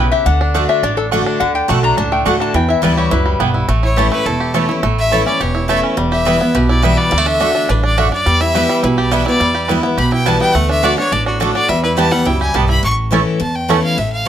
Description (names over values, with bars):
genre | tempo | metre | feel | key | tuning
bluegrass | 210 BPM | 4/4 | straight | unclear | A4 = 438 Hz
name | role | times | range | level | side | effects
lap resonator guitar | second line | 0.0-3.4 s | A4 to A#5 | -18 LUFS | left 6 dB | none
picked steel-string acoustic guitar | accompaniment | 0.0-14.3 s | E2 to F#4 | -18 LUFS | left 1 dB | none
bluegrass banjo | arpeggios | 0.0-13.8 s | D3 to G4 | -20 LUFS | right 4 dB | none
mandolin | stabs | 0.0-13.8 s | A3 to A5 | -20 LUFS | right 8 dB | none
upright bass | bass | 0.0-14.3 s | E1 to E2 | -18 LUFS | equal | none
clear fiddle | melody | 3.8-14.3 s | F#4 to C#6 | -18 LUFS | left 1 dB | none
room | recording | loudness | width
light reverb | close, detailed microphones | -12 LUFS | side -10 dB against mid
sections
0.0-3.7 A section; 3.7-12.8 A section; 12.8-14.3 A section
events
resonator guitar played with a steel bar solo 0.0-3.7; fiddle solo 3.7-14.3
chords
0.3 D; 2.5 Em; 3.7 A; 6.0 Em; 7.1 D; 8.3 Em; 10.6 D; 11.7 Em; 12.8 A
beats
| 0.26 0.55 0.83 1.12 | 1.40 1.69 1.98 2.26 | 2.55 2.83 3.12 3.40 | 3.69 3.98 4.26 4.55 | 4.83 5.12 5.41 5.69 | 5.98 6.26 6.55 6.84 | 7.12 7.41 7.69 7.98 | 8.27 8.55 8.84 9.12 | 9.41 9.69 9.98 10.27 | 10.55 10.84 11.12 11.41 | 11.69 11.98 12.27 12.55 | 12.84 13.12 13.41 13.70 | 13.98 14.27